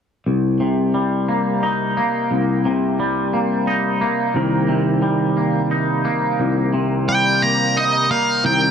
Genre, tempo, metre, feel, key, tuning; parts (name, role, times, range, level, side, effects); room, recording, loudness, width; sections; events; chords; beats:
rock; 59 BPM (dotted quarters); 6/8; straight; C minor; A4 = 443 Hz
twangy electric guitar; arpeggios; 0.3-8.7 s; C2 to Eb4; -18 LUFS; left 1 dB; analog chorus, tape echo
pedal steel guitar; sustained chords; 4.4-8.7 s; Eb3 to Bb4; -24 LUFS; right 4 dB; lush chorus
octave-fuzz lead guitar; melody; 7.1-8.7 s; Eb5 to Bb5; -16 LUFS; right 1 dB; distortion, tape echo
light reverb; dark, warm production; -16 LUFS; side -7 dB against mid
0.3-8.4 A section
0.3 Cm7
| 0.26 1.28 | 2.30 3.33 | 4.35 5.37 | 6.40 7.42 | 8.44